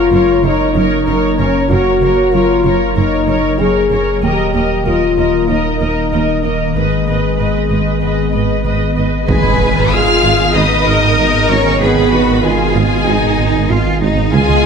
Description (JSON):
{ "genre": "cinematic, hybrid orchestral and electronic film score", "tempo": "95 BPM", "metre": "4/4", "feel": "straight", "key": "G# dorian", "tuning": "A4 = 440 Hz", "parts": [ { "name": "rich symphonic viola section", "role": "accompaniment", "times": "0.0-14.7 s", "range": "G#3 to D#5", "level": "-21 LUFS", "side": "right 2 dB", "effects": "none" }, { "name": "glassy FM pad", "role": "sustained chords", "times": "0.0-14.7 s", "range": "D#3 to D#5", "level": "-20 LUFS", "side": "left 1 dB", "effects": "ensemble chorus, built-in reverb" }, { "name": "mellow French horn section", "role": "sustained chords", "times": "0.0-14.7 s", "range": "G#3 to G#4", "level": "-17 LUFS", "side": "left 3 dB", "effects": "none" }, { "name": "saturated sub bass", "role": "bass", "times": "0.0-14.7 s", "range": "D#1 to C#2", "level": "-21 LUFS", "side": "equal", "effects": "none" }, { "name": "rich studio double bass section", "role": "bass", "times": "0.1-14.6 s", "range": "F#1 to D#2", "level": "-21 LUFS", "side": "right 5 dB", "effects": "none" }, { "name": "rich symphonic cello section", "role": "bass", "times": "0.1-14.7 s", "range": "D#2 to B4", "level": "-19 LUFS", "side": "right 2 dB", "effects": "none" }, { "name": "warm symphonic violin section", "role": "melody", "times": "9.3-14.7 s", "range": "G#5 to E#6", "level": "-18 LUFS", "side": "left 4 dB", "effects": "none" }, { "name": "warm studio violin section", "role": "second line", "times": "9.3-14.7 s", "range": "G#4 to E#5", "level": "-19 LUFS", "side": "left 1 dB", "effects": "none" }, { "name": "dark trombone section", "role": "sustained chords", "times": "9.3-14.7 s", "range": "B2 to G#3", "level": "-23 LUFS", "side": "right 5 dB", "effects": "none" }, { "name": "dark tuba", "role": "bass", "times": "9.3-14.4 s", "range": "G#1 to C#2", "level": "-21 LUFS", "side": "right 4 dB", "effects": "none" }, { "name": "impact", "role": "sound effects", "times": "9.3-11.8 s", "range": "none", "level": "-22 LUFS", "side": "equal", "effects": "none" } ], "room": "moderate scoring stage reverb, RT60 1.9 s", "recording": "none", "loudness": "-11 LUFS", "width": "side -6 dB against mid", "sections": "0.0-9.3 A section; 9.3-14.7 B section", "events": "impact 9.3-11.8", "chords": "0.0 F#; 4.2 D#; 6.8 G#m" }